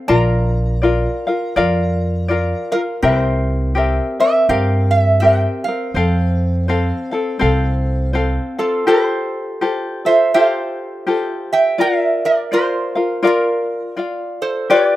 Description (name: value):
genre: Hawaiian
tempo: 82 BPM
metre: 4/4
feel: swing 60% on 8ths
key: F major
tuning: A4 = 441 Hz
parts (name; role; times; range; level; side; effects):
- metal-body resonator slide guitar; melody; 0.0-15.0 s; F4 to Bb5; -17 LUFS; right 3 dB; none
- tenor ukulele; accompaniment; 0.0-15.0 s; C4 to F5; -18 LUFS; left 3 dB; none
- upright bass; bass; 0.1-8.4 s; Bb1 to G2; -17 LUFS; right 1 dB; none
room: little or no reverb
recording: rough home demo mix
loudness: -15 LUFS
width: side -15 dB against mid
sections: 0.0-8.9 A section; 8.9-15.0 A section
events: none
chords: 0.1 Bb; 3.0 C7; 6.0 F; 8.9 Fadd9; 11.8 Bb/F